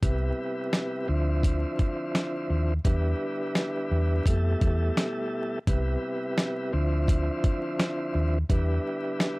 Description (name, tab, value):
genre	hip hop, boom-bap hip-hop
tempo	85 BPM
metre	4/4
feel	swing 61% on 16ths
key	C major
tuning	A4 = 439 Hz
part	tonewheel organ	accompaniment	0.0-9.4 s	B2 to E4	-29 LUFS	equal	fast rotary speaker, high-pass filter, low-pass filter
part	hollow-body short-scale fingered electric bass	bass	0.0-8.8 s	C2 to F2	-25 LUFS	equal	none
part	dusty soul sampler-style drum kit	drums	0.0-9.4 s	hi-hat, kick drum, rim click, snare drum	-25 LUFS	equal	none
room	little or no reverb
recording	dry, gritty hardware recording, vinyl crackle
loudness	-24 LUFS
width	side -24 dB against mid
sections	0.0-9.4 A section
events	none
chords	0.0 Cmaj7; 1.1 Dm9; 2.8 Em7; 4.3 Fmaj9#11; 5.7 Cmaj7; 6.7 Dm9; 8.5 Em7